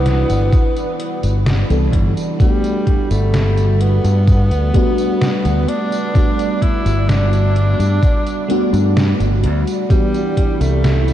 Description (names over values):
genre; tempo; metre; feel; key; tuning
vaporwave; 64 BPM; 4/4; straight; G major; A4 = 440 Hz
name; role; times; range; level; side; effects
clear tenor saxophone; melody; 0.0-11.1 s; G3 to E4; -23 LUFS; equal; tape echo
FM electric piano with soft pad layer; accompaniment; 0.0-11.1 s; E3 to B4; -21 LUFS; equal; phaser, wide subtle chorus, ping-pong delay
warbly tape-like pad; sustained chords; 0.0-11.1 s; G3 to B5; -26 LUFS; right 3 dB; chorus, built-in reverb, vintage 12-bit sampler grit
modern bright fingered electric bass; bass; 0.0-11.1 s; G1 to G2; -15 LUFS; equal; none
detuned 8-bit digital drum machine; drums; 0.1-11.1 s; hi-hat, snare drum, tambourine; -24 LUFS; equal; none
electronic kick drum; drums; 0.5-10.6 s; none; -15 LUFS; equal; none
room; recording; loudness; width
moderate huge ambient reverb, RT60 8.0 s; dreamy mix soaked in reverb, cassette tape; -13 LUFS; side -12 dB against mid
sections
0.0-11.1 A section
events
none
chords
0.0 Cmaj9#11; 2.4 Gmaj7; 9.9 Cmaj9#11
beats
0.53 1.47 | 2.40 3.34 4.28 5.22 | 6.15 7.09 8.03 8.97 | 9.90 10.84